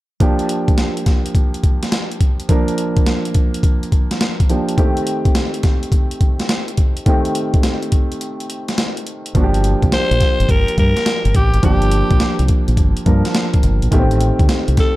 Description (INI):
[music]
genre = R&B, new jack swing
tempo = 105 BPM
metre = 4/4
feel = swing 67% on 16ths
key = G minor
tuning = A4 = 440 Hz
[part]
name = warm concert grand piano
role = accompaniment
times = 0.2-15.0 s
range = Eb3 to Bb4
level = -21 LUFS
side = right 1 dB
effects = none
[part]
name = breakbeat sampler-style drum kit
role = drums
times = 0.2-15.0 s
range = hi-hat, kick drum, snare drum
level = -16 LUFS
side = equal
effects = none
[part]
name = deep dub fingered electric bass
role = bass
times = 9.4-14.8 s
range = G1 to G2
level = -16 LUFS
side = equal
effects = none
[part]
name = raspy alto saxophone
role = melody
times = 9.9-15.0 s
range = G4 to C5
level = -19 LUFS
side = left 1 dB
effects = none
[sound]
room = little or no reverb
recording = dark, warm production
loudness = -14 LUFS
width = side -17 dB against mid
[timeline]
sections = 0.2-9.3 A section; 9.3-15.0 B section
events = break 8.2-9.3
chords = 0.2 Gm7; 4.8 Am7b5; 9.3 Gm7; 13.9 Am7b5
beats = | 0.21 0.78 1.35 1.92 | 2.49 3.06 3.64 4.21 | 4.78 5.35 5.92 6.49 | 7.06 7.64 8.21 8.78 | 9.35 9.92 10.49 11.06 | 11.64 12.21 12.78 13.35 | 13.92 14.49